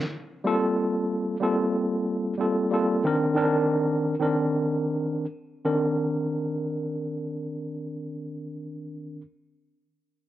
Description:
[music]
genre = hip hop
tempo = 92 BPM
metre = 4/4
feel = swing 61% on 16ths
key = C dorian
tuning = A4 = 435 Hz
[part]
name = tine electric piano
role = accompaniment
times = 0.0-9.2 s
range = Eb3 to Bb4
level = -24 LUFS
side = equal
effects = overdrive, medium stereo tremolo, cassette tape, high-pass filter, low-pass filter
[sound]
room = light reverb, digital ambience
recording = worn, warbling old tape, cassette tape, warbly pitch drift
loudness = -24 LUFS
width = side -13 dB against mid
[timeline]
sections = 0.0-5.7 A section; 5.7-8.3 B section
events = none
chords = 0.4 Gm11; 3.0 Cm9

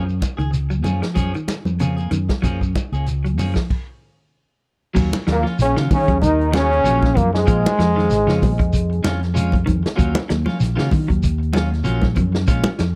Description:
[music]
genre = afrobeat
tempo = 96 BPM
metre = 4/4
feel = swing 55% on 16ths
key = Eb minor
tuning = A4 = 440 Hz
[part]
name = clean electric guitar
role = stabs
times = 0.0-12.8 s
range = F3 to Ab4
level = -31 LUFS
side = equal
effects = spring reverb
[part]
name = fingered electric bass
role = bass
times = 0.0-13.0 s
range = Ab1 to Eb3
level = -23 LUFS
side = equal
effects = none
[part]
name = shekere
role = percussion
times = 0.1-13.0 s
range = none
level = -28 LUFS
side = equal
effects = none
[part]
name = vintage drum kit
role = drums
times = 0.2-12.9 s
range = crash cymbal, hi-hat, kick drum, snare drum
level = -24 LUFS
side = equal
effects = none
[part]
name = congas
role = percussion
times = 0.2-12.8 s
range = none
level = -26 LUFS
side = equal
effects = none
[part]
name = clean electric guitar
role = arpeggios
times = 0.4-12.9 s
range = Db3 to Gb3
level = -27 LUFS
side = equal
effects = warbly pitch drift
[part]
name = clear trombone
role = melody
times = 5.3-9.2 s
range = Ab3 to Eb4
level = -22 LUFS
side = equal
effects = none
[part]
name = clear trombone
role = second line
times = 5.3-9.2 s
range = Ab3 to Eb4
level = -28 LUFS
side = equal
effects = none
[part]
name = clear trombone section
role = second line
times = 5.3-9.2 s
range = Ab2 to Eb3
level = -31 LUFS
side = equal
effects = none
[sound]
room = little or no reverb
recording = dry, close 1970s-style studio recording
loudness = -19 LUFS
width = mono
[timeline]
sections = 0.0-5.0 A section; 5.0-13.0 B section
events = stop 3.7-5.0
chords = 0.0 Gbmaj9; 5.0 Ebm9; 7.5 Bbm7; 10.0 Ebm9

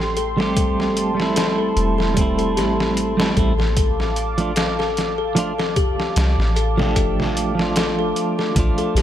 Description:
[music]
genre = trip hop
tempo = 75 BPM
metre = 4/4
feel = swing 55% on 16ths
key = unclear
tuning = A4 = 440 Hz
[part]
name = dark analog pad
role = sustained chords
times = 0.0-9.0 s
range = A4 to D6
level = -26 LUFS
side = right 3 dB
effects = chorus
[part]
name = music box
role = arpeggios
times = 0.0-9.0 s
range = G4 to A4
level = -25 LUFS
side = left 9 dB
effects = tape echo
[part]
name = soft 808-style bass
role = bass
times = 0.0-9.0 s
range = E1 to C2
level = -23 LUFS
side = equal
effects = none
[part]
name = trip hop sampler-style drum kit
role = drums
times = 0.0-9.0 s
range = hi-hat, kick drum, snare drum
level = -23 LUFS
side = equal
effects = overdrive, small room ambience
[part]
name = clean electric guitar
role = accompaniment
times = 0.4-9.0 s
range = F3 to G4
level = -22 LUFS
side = right 3 dB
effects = tremolo, tape echo
[sound]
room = light reverb, digital ambience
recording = none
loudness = -17 LUFS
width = side -11 dB against mid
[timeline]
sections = 0.0-9.0 A section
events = none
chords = 0.0 Am7; 3.8 Dm/A

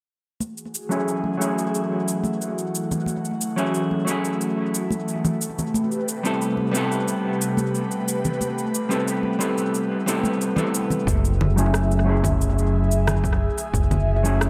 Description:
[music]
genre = sunset chillout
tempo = 90 BPM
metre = 4/4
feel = straight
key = unclear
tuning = A4 = 440 Hz
[part]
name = airy breathy pad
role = sustained chords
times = 0.8-14.5 s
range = C3 to E5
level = -30 LUFS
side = equal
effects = chorus, phaser
[part]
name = electronic cabasa, congas and rim click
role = drums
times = 0.4-14.5 s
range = none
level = -31 LUFS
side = equal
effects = overdrive, tape echo
[part]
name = congas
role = percussion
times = 0.4-11.0 s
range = none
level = -32 LUFS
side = equal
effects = tape echo
[part]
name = vintage hollow-body jazz guitar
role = accompaniment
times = 0.9-14.5 s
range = F#3 to A4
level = -27 LUFS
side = equal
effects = low-pass filter, dub echo
[part]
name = fingered electric bass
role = bass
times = 11.1-14.5 s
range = F#1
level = -23 LUFS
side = equal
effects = tube saturation
[part]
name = electronic kick drum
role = drums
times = 11.1-13.9 s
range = none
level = -28 LUFS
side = equal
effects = overdrive
[sound]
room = light reverb, digital ambience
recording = echo-heavy mix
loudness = -23 LUFS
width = mono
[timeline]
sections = 0.4-11.1 A section; 11.1-14.5 B section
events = filter sweep on hollow-body jazz guitar 0.4-11.1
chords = 0.4 F#m9; 5.4 Am9; 11.1 F#m9

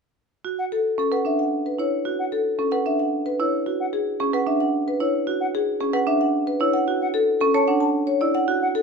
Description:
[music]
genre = classical, minimalist pattern music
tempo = 112 BPM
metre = 3/4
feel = straight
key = B dorian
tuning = A4 = 440 Hz
[part]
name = marimba with medium hard mallets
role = arpeggios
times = 0.4-8.7 s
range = C#4 to C#5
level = -24 LUFS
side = right 5 dB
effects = none
[part]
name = silver concert flute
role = arpeggios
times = 0.6-8.7 s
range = F#5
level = -29 LUFS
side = left 2 dB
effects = none
[part]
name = marimba with medium mallets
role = melody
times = 0.7-8.8 s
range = G#4 to A5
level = -22 LUFS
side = left 4 dB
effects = none
[sound]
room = moderate large studio reverb, RT60 1.1 s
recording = minimal, uncompressed stereo recording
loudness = -20 LUFS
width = side -5 dB against mid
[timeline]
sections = 0.3-8.8 A section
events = none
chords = 0.3 Bm9; 6.7 Dmaj7

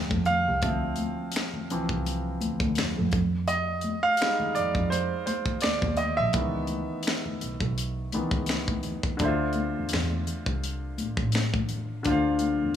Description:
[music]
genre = R&B, neo-soul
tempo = 84 BPM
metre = 4/4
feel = swing 55% on 16ths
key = D minor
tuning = A4 = 444 Hz
[part]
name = clear baby grand piano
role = accompaniment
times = 0.0-12.8 s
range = D3 to A5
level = -28 LUFS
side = right 1 dB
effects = none
[part]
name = warm double bass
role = bass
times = 0.0-12.7 s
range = A1 to F2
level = -30 LUFS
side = equal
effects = none
[part]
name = tight funk drum kit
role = drums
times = 0.1-12.6 s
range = finger snaps, hi-hat, kick drum, snare drum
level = -30 LUFS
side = left 1 dB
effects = none
[part]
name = congas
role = percussion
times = 0.1-12.6 s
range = none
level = -36 LUFS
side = left 3 dB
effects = none
[sound]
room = light reverb, studio ambience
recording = small room ambience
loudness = -25 LUFS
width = side -10 dB against mid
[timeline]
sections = 0.0-9.2 A section; 9.2-12.8 B section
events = grand piano solo 0.0-9.2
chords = 0.0 Dm9; 3.1 Fm9; 6.3 C#m9; 9.2 Dm9

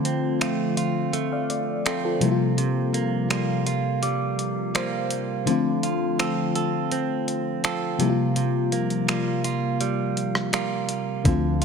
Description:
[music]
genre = contemporary R&B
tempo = 83 BPM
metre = 4/4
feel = straight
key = unclear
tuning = A4 = 439 Hz
[part]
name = mellow FM electric piano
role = accompaniment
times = 0.0-11.6 s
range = C3 to F5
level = -24 LUFS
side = left 4 dB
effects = chorus
[part]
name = direct-recorded clean electric guitar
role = arpeggios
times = 0.0-11.6 s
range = C3 to A4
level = -27 LUFS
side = right 10 dB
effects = ping-pong delay
[part]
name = worn celesta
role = texture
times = 0.0-7.1 s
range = G5 to E6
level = -37 LUFS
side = left 4 dB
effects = ping-pong delay
[part]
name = dusty soul sampler-style drum kit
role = drums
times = 0.1-11.6 s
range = finger snaps, hi-hat, kick drum, rim click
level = -28 LUFS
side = equal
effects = none
[part]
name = long sustained 808-style bass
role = bass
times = 11.3-11.6 s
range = D2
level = -26 LUFS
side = equal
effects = none
[sound]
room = light reverb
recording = none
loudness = -22 LUFS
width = side -6 dB against mid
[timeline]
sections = 0.0-11.6 A section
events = break 0.0-11.3; FM electric piano fill 4.4-5.5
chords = 0.0 Dm7; 2.2 C7sus4; 5.5 Dm7; 8.0 C7sus4

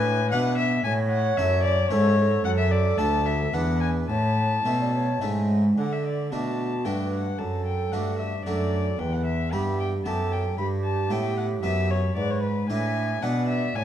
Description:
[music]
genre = classical, baroque-style sonata movement with continuo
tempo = 113 BPM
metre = 3/4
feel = rubato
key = A major, D major from 5.8 s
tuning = A4 = 438 Hz
[part]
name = dark violin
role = melody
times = 0.0-13.8 s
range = B4 to B5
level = -28 LUFS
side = left 5 dB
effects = none
[part]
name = baroque flute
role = second line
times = 0.0-13.8 s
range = F#4 to G#5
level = -30 LUFS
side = right 5 dB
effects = none
[part]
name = harpsichord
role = accompaniment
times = 0.0-13.8 s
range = D2 to B4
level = -30 LUFS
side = equal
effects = none
[part]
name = rich cello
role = bass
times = 0.0-13.8 s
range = D2 to D3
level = -26 LUFS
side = equal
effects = none
[sound]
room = moderate recital hall reverb, RT60 1.4 s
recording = dark, warm production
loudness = -22 LUFS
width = side -10 dB against mid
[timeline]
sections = 0.0-5.8 A section; 5.8-13.8 A section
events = none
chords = 0.0 E7; 0.9 A; 2.4 D/F#; 3.5 E7(no3); 4.1 A; 5.8 D; 7.4 D/F#; 9.0 Em; 10.6 Em/G; 12.2 E7/G#

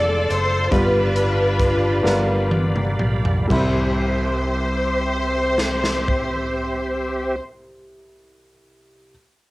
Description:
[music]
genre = slow gospel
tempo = 39-49 BPM (dotted quarters)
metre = 6/8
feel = straight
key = C major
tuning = A4 = 438 Hz
[part]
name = rich studio string section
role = melody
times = 0.0-7.4 s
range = D4 to D5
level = -22 LUFS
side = left 1 dB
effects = cassette tape
[part]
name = clear baby grand piano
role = accompaniment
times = 0.0-9.1 s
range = C2 to B5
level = -25 LUFS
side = equal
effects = cassette tape
[part]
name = bright tonewheel organ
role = sustained chords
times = 0.0-7.4 s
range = C4 to C6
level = -26 LUFS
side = right 1 dB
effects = fast rotary speaker, chorus vibrato, cassette tape
[part]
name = fingered electric bass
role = bass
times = 0.0-7.4 s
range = F1 to C2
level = -24 LUFS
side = equal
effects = none
[part]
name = swinging big-band drum kit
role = drums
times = 0.3-6.3 s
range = crash cymbal, hi-hat, kick drum, snare drum, toms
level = -25 LUFS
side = equal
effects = cassette tape
[sound]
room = moderate small room reverb, RT60 0.5 s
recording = home recording on cassette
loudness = -18 LUFS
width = side -20 dB against mid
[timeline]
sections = 0.0-3.5 A section; 3.5-6.6 B section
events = slowing down 0.0-3.5; drum fill 2.0-3.5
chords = 0.0 Dm7/F; 0.7 G7; 3.5 Cmaj7

